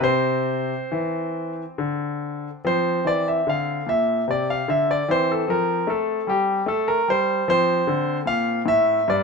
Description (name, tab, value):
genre	classical, baroque-style suite movement for grand piano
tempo	67-76 BPM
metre	3/4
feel	rubato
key	F major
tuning	A4 = 439 Hz
part	bright concert grand piano	solo	0.0-9.2 s	G2 to F5	-20 LUFS	equal	none
room	moderate stone room reverb, RT60 1.0 s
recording	minimal, uncompressed stereo recording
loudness	-20 LUFS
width	side -4 dB against mid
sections	0.0-2.6 A section; 2.6-9.2 A section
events	none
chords	0.0 C; 2.6 F5; 5.1 C/E; 7.5 F